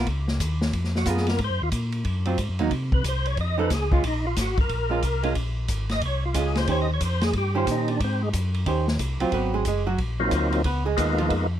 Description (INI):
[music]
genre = soul jazz organ trio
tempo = 182 BPM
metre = 4/4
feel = swing 64% on 8ths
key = Ab mixolydian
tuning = A4 = 439 Hz
[part]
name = archtop guitar, miked and amplified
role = accompaniment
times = 0.0-11.3 s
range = Eb3 to C5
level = -26 LUFS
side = right 4 dB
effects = none
[part]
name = mellow tonewheel organ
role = bass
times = 0.0-11.6 s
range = Gb1 to C3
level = -26 LUFS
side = equal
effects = chorus vibrato, slow rotary speaker
[part]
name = vintage drum kit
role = drums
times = 0.1-11.4 s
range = hi-hat, kick drum, ride cymbal, snare drum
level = -28 LUFS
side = equal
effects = none
[part]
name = percussive tonewheel organ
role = melody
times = 1.0-11.5 s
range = Gb3 to Eb5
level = -27 LUFS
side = left 1 dB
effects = slow rotary speaker, overdrive, chorus vibrato
[sound]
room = little or no reverb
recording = close, detailed microphones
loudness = -22 LUFS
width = side -11 dB against mid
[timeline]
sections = 0.0-9.3 A section; 9.3-11.6 A section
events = tonewheel organ solo 0.0-9.3; hollow-body jazz guitar solo 9.3-11.6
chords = 0.0 Db13; 1.4 Ab9; 2.7 Bsus2; 3.4 F7alt; 4.0 Bbm7; 6.7 Eb13; 8.0 Ab7; 8.7 Eb13; 9.3 Ab13; 10.6 Db13